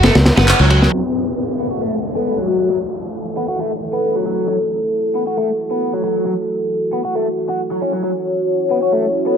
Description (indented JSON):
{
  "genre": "breakbeat, breaks",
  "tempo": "135 BPM",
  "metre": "4/4",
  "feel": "straight",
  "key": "F# minor",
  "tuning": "A4 = 440 Hz",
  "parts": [
    { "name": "overdriven electric guitar", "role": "riff", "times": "0.0-9.4 s", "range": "F#3 to F#4", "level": "-20 LUFS", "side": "equal", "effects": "low-pass filter, digital delay" },
    { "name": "fingered electric bass", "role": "bass", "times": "0.0-0.9 s", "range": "F#1 to C#2", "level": "-13 LUFS", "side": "equal", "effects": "none" },
    { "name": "crunchy breakbeat drum kit", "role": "drums", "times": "0.0-0.9 s", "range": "ride cymbal, snare drum", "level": "-16 LUFS", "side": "equal", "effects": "none" },
    { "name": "electronic handclaps", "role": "drums", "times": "0.5-0.6 s", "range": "none", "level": "-18 LUFS", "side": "equal", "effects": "none" },
    { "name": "dark analog pad", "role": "sustained chords", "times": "2.8-9.4 s", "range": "E4 to C#5", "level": "-19 LUFS", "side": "equal", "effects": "chorus, phaser" },
    { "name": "downlifter", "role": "sound effects", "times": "0.9-4.5 s", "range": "none", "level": "-24 LUFS", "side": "left 2 dB", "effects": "none" },
    { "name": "vibraphone with soft mallets", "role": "melody", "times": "2.2-2.6, 9.3 s", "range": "F#4 to A4", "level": "-21 LUFS", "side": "left 4 dB", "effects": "AM radio sound, digital delay" }
  ],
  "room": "moderate lush hall reverb, RT60 2.0 s, small room ambience",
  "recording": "low-pass filter",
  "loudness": "-15 LUFS",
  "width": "side -7 dB against mid",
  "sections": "0.9-9.4 A section",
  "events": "break 0.0-0.9; band accent 0.5; filter sweep 0.9-9.4",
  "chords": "0.0 F#5; 0.9 F#m7",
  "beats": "0.04 0.48 | 0.93 1.37 1.82 2.26 | 2.71 3.15 3.59 4.04 | 4.48 4.93 5.37 5.82 | 6.26 6.71 7.15 7.59 | 8.04 8.48 8.93 9.37"
}